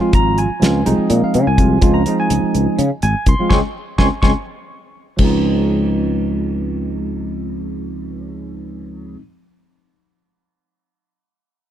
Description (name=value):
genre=electric jazz fusion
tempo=249 BPM (eighths)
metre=7/8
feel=straight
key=Db major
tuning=A4 = 442 Hz
part: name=barky tine electric piano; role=accompaniment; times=0.0-9.2 s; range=F3 to Db6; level=-19 LUFS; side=right 2 dB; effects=lush chorus
part: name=sustaining fretless electric bass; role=bass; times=0.0-9.2 s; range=Ab1 to Db3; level=-18 LUFS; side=left 1 dB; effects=analog chorus
part: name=damped 70s drum kit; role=drums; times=0.1-5.3 s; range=crash cymbal, hi-hat, kick drum, snare drum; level=-17 LUFS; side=equal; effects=none
room=little or no reverb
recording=dark, warm production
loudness=-14 LUFS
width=side -10 dB against mid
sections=0.0-5.2 A section; 5.2-8.6 B section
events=band accent 3.5-5.2; drum fill 4.5-5.2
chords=0.0 Dbmaj9